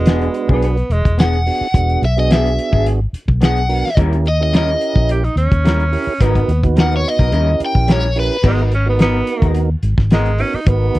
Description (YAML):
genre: straight-eighth soul blues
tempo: 108 BPM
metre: 4/4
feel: swing 53% on 16ths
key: G# minor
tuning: A4 = 441 Hz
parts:
  - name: clear tenor saxophone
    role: second line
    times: 0.0-1.2, 5.1-11.0 s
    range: G#3 to G4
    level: -21 LUFS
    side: right 2 dB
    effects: none
  - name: tonewheel organ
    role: accompaniment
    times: 0.0-11.0 s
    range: B3 to B4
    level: -22 LUFS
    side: right 5 dB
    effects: overdrive, slow rotary speaker
  - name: vintage muted fingered electric bass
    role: bass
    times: 0.0-11.0 s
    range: E1 to D#2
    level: -16 LUFS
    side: equal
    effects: none
  - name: electric guitar through a small old amp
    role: stabs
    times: 0.1-10.3 s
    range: F#3 to A#4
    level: -22 LUFS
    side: left 3 dB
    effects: none
  - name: cloth-damped thuddy drum kit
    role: drums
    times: 0.1-11.0 s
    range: crash cymbal, hi-hat, kick drum, snare drum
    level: -15 LUFS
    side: equal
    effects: none
  - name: crunchy overdriven guitar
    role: melody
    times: 1.2-8.4 s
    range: B4 to G5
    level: -19 LUFS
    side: equal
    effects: none
room: little or no reverb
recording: dry, close 1970s-style studio recording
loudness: -13 LUFS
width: side -17 dB against mid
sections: 0.0-8.4 A section; 8.4-11.0 B section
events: tenor saxophone solo 8.4-11.0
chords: 0.0 E7; 4.0 D#7b9; 6.2 G#m9; 7.3 D#7b9; 8.4 G#m9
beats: 0.06 0.62 1.18 | 1.74 2.29 2.85 3.41 | 3.97 4.53 5.09 5.64 | 6.20 6.76 7.32 7.88 | 8.44 8.99 9.55 10.11 | 10.67